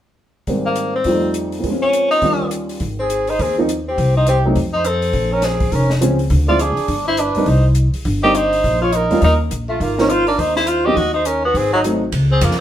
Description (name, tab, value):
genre	jazz, small-group swing and bop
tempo	206 BPM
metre	4/4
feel	swing 61% on 8ths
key	Ab major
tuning	A4 = 439 Hz
part	dark baby grand piano	accompaniment	0.5-12.0 s	Eb2 to F4	-19 LUFS	right 1 dB	none
part	compact cocktail drum kit	drums	0.5-12.6 s	hi-hat, kick drum, ride cymbal, snare drum	-27 LUFS	equal	none
part	warm tenor saxophone	melody	0.7-12.6 s	Gb3 to G4	-18 LUFS	left 1 dB	none
part	upright bass	bass	2.8-12.6 s	F1 to F2	-18 LUFS	equal	none
part	clear trumpet	second line	3.0-12.6 s	Eb4 to Eb5	-23 LUFS	right 4 dB	none
room	wet studio reverb, RT60 0.8 s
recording	band playing live in one room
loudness	-14 LUFS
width	side -11 dB against mid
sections	0.5-2.8 A section; 2.8-12.1 B section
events	none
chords	0.5 Abmaj9; 1.1 F7; 1.6 Bbm7; 2.2 Eb7; 2.8 Ab; 4.0 Cm; 4.6 F; 5.1 Bbm9; 6.3 Dm7b5; 6.9 Cm; 8.6 Bbm; 9.2 Eb5; 9.8 Ab69; 11.0 Ebm7; 11.5 Ab7b9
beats	| 0.47 0.77 1.06 1.35 | 1.64 1.94 2.23 2.52 | 2.81 3.10 3.39 3.68 | 3.98 4.27 4.56 4.85 | 5.14 5.43 5.72 6.01 | 6.31 6.60 6.89 7.18 | 7.47 7.76 8.05 8.34 | 8.63 8.93 9.22 9.51 | 9.80 10.09 10.38 10.67 | 10.96 11.25 11.54 11.83 | 12.12 12.41